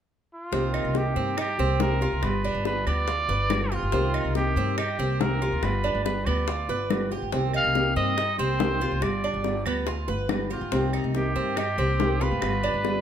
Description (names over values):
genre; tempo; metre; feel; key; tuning
latin, Cuban son and guajira; 141 BPM; 4/4; straight; C minor; A4 = 442 Hz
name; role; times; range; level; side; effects
clear trumpet; melody; 0.3-13.0 s; F4 to F5; -29 LUFS; right 1 dB; plate reverb
nylon-string guitar; accompaniment; 0.5-13.0 s; C3 to G4; -30 LUFS; left 2 dB; none
Cuban tres; arpeggios; 0.5-13.0 s; B3 to B4; -31 LUFS; right 6 dB; none
upright bass; bass; 0.5-13.0 s; G1 to G2; -28 LUFS; equal; none
bongos; percussion; 0.5-13.0 s; none; -32 LUFS; left 7 dB; none
claves; percussion; 0.7-12.6 s; none; -38 LUFS; right 2 dB; none
room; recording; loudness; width
moderate large studio reverb, RT60 0.9 s; none; -23 LUFS; side -9 dB against mid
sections
0.5-13.0 A section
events
none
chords
0.0 N.C.; 0.5 Cm7; 2.2 G7; 3.9 Cm7; 5.6 G7; 7.3 Cm7; 9.0 G7; 10.7 Cm7; 12.4 G7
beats
0.10 | 0.53 0.95 1.38 1.80 | 2.23 2.65 3.08 3.50 | 3.93 4.36 4.78 5.21 | 5.63 6.05 6.48 6.90 | 7.33 7.75 8.18 8.60 | 9.03 9.45 9.88 10.30 | 10.72 11.15 11.57 12.00 | 12.42 12.85